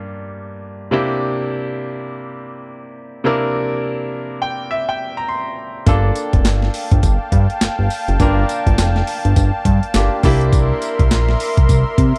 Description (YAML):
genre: R&B, new jack swing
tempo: 103 BPM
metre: 4/4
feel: swing 61% on 16ths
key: unclear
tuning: A4 = 439 Hz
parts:
  - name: bright concert grand piano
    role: accompaniment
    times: 0.0-12.2 s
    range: G2 to C6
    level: -24 LUFS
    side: equal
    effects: none
  - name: warm analog pad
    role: sustained chords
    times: 5.9-12.2 s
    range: Bb4 to C6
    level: -26 LUFS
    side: equal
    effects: chorus
  - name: fat analog bass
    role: bass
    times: 5.9-12.1 s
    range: F1 to C3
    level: -18 LUFS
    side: equal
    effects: none
  - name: dusty soul sampler-style drum kit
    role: drums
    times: 5.9-12.2 s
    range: handclaps, hi-hat, kick drum, snare drum, tambourine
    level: -19 LUFS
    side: equal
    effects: overdrive
room: digital ambience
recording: dry, close 1970s-style studio recording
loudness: -17 LUFS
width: mono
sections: 0.0-12.2 A section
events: grand piano fill 4.1-5.9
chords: 0.0 Gm9; 0.9 C7; 5.9 Gm9; 10.2 C7